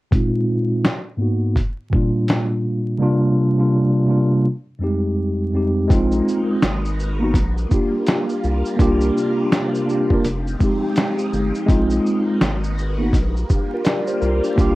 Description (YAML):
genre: lo-fi hip hop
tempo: 83 BPM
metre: 4/4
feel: swing 62% on 16ths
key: unclear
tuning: A4 = 440 Hz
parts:
  - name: mellow tine electric piano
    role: accompaniment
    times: 0.1-14.8 s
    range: F2 to D5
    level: -18 LUFS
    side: equal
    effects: medium stereo tremolo, cassette tape, low-pass filter
  - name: dusty soul sampler-style drum kit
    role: drums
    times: 0.1-14.8 s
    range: hi-hat, kick drum, shaker, snare drum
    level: -19 LUFS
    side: equal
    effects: none
  - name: phased string machine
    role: sustained chords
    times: 6.1-14.8 s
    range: C3 to Cb5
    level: -28 LUFS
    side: equal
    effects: ensemble chorus, phaser
  - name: round analog bass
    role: bass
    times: 5.9-14.8 s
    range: F1 to C2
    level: -22 LUFS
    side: equal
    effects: none
room: moderate studio reverb, RT60 0.5 s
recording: worn, warbling old tape, cassette tape, vinyl crackle, warbly pitch drift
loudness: -17 LUFS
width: side -18 dB against mid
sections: 0.1-5.9 A section; 5.9-14.8 B section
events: filter sweep on tine electric piano 0.1-5.9; drums muted 3.0-5.9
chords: 0.1 Bb9sus4; 0.8 Abm7; 1.6 Gm7/Bb; 3.0 C9sus4; 4.5 Fm9; 5.9 Bb9sus4; 6.6 Abm7; 7.3 Gm7/Bb; 8.8 C9sus4; 10.2 Fm9; 11.7 Bb9sus4; 12.4 Abm7; 13.1 Gm7/Bb